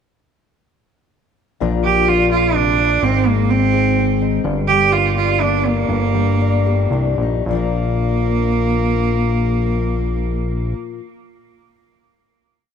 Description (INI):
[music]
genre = acoustic folk duo or small band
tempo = 108-128 BPM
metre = 3/4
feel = straight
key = Bb mixolydian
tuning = A4 = 440 Hz
[part]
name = fingerpicked steel-string acoustic guitar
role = accompaniment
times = 1.6-11.1 s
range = G2 to Bb4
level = -21 LUFS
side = left 11 dB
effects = none
[part]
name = fat analog bass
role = bass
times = 1.6-10.7 s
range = G1 to C2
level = -19 LUFS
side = left 1 dB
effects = none
[part]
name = bright cello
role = melody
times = 1.8-10.7 s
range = Bb3 to G4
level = -18 LUFS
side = right 8 dB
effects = tape echo
[sound]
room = light reverb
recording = 1960s-style stereo with parts hard left and right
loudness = -15 LUFS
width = side -7 dB against mid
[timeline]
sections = 1.6-7.5 verse; 7.5-10.8 final chord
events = slowing down 4.4-7.5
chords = 1.6 Bb; 3.0 Ab; 4.4 Gm; 5.9 Ebmaj7/G; 7.5 Bb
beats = | 1.61 2.08 2.55 | 3.02 3.50 3.97 | 4.44 4.91 5.39 | 5.88 6.39 6.91 | 7.46 8.02 8.57 | 9.13 9.69 10.25